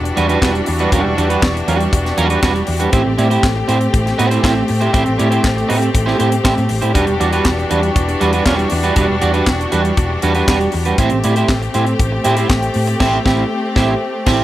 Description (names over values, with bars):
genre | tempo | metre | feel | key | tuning
disco | 119 BPM | 4/4 | straight | E minor | A4 = 440 Hz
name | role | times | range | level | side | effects
electric guitar at the edge of break-up | accompaniment | 0.0-14.4 s | G3 to D5 | -17 LUFS | right 4 dB | analog chorus
clear studio string section | sustained chords | 0.0-14.4 s | E3 to G4 | -20 LUFS | left 2 dB | none
hollow-body short-scale picked electric bass | bass | 0.0-14.4 s | E1 to A2 | -19 LUFS | equal | none
tight funk drum kit | drums | 0.1-14.4 s | crash cymbal, handclaps, hi-hat, kick drum, snare drum | -18 LUFS | left 1 dB | none
room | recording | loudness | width
light reverb, small room ambience | none | -13 LUFS | side -14 dB against mid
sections
0.0-14.4 A section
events
band accent 13.0-14.4; drum fill 14.0-14.4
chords
0.0 Em9; 2.9 Am7; 7.0 Em9; 11.0 Am7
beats
0.42 | 0.92 1.42 1.93 2.43 | 2.93 3.43 3.93 4.44 | 4.94 5.44 5.95 6.45 | 6.95 7.46 7.96 8.46 | 8.97 9.47 9.98 10.48 | 10.99 11.49 11.99 12.50 | 13.01 13.51 14.02